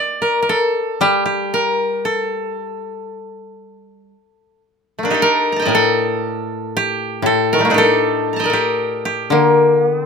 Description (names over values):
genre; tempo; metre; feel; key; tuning
japanese traditional, Japanese chamber music; 58 BPM; 4/4; rubato; D miyako bushi; A4 = 445 Hz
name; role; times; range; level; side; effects
koto; melody; 0.0-10.1 s; Eb3 to Bb5; -16 LUFS; equal; none
koto; accompaniment; 1.0-10.1 s; A2 to G3; -21 LUFS; left 2 dB; none
room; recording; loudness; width
little or no reverb; close, detailed microphones; -14 LUFS; side -6 dB against mid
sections
0.0-10.1 A section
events
none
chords
none